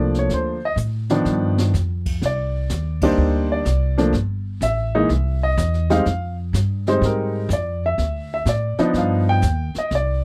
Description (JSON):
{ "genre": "jazz piano trio", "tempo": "125 BPM", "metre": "4/4", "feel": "swing 68% on 8ths", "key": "C minor", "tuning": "A4 = 440 Hz", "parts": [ { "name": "warm upright piano", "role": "melody", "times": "0.0-10.2 s", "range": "Eb3 to G5", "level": "-23 LUFS", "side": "equal", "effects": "none" }, { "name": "upright bass", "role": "bass", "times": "0.0-10.2 s", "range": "G1 to A2", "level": "-24 LUFS", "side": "equal", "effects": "none" }, { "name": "jazz brush drum kit", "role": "drums", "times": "0.1-10.2 s", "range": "brushed snare drum, crash cymbal, hi-hat, kick drum, snare drum, toms", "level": "-32 LUFS", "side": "equal", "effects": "none" } ], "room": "little or no reverb", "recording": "dry, close 1970s-style studio recording", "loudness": "-21 LUFS", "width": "mono", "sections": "0.0-2.2 A section; 2.2-10.2 B section", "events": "drum fill 0.8-1.7; band accent 2.9", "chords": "0.0 Gm9 (rootless); 1.3 G7b13; 2.2 Cm9; 4.1 Gsus2; 5.1 C; 6.1 Fm9; 8.0 Dsus2; 8.9 G7b13", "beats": "| 0.30 0.78 1.26 1.74 | 2.22 2.70 3.18 3.66 | 4.14 4.62 5.10 5.58 | 6.06 6.54 7.02 7.50 | 7.98 8.46 8.94 9.43 | 9.91" }